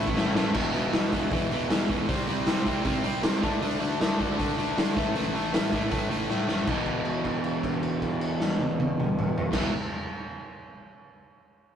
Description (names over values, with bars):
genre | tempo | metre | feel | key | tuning
punk rock | 156 BPM | 4/4 | straight | unclear | A4 = 440 Hz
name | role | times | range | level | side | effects
crunchy overdriven guitar | riff | 0.0-9.7 s | E2 to D4 | -28 LUFS | equal | none
fuzz picked electric bass | bass | 0.0-9.7 s | E1 to D3 | -35 LUFS | equal | overdrive
raw garage drum kit | drums | 0.1-9.6 s | crash cymbal, hi-hat, kick drum, snare drum, toms | -28 LUFS | equal | none
room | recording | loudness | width
little or no reverb | rough rehearsal-room recording, tube saturation | -24 LUFS | side -8 dB against mid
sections
0.6-6.7 A section; 6.7-9.8 B section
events
drum fill 0.2-0.6, 6.3-6.7; held note 6.7-9.5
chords
0.0 A5; 0.6 E5; 2.1 C5; 3.4 D5; 5.0 A5; 6.7 E5